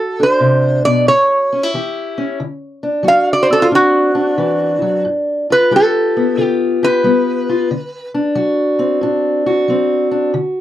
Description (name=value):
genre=acoustic country blues, solo or duo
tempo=91 BPM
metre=4/4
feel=swing 67% on 8ths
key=D mixolydian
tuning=A4 = 440 Hz
part: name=lap resonator guitar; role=melody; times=0.0-8.1 s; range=F4 to F5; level=-14 LUFS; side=right 1 dB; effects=none
part: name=fingerpicked steel-string acoustic guitar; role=accompaniment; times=0.0-10.6 s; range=G2 to G4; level=-15 LUFS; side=left 1 dB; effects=none
room=light reverb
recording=dry, close 1970s-style studio recording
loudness=-12 LUFS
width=side -12 dB against mid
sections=0.0-2.4 A section; 2.4-10.6 B section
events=resonator guitar played with a steel bar solo 2.4-10.6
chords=0.0 D7; 1.1 A7; 2.4 D7; 5.1 G7; 7.7 D7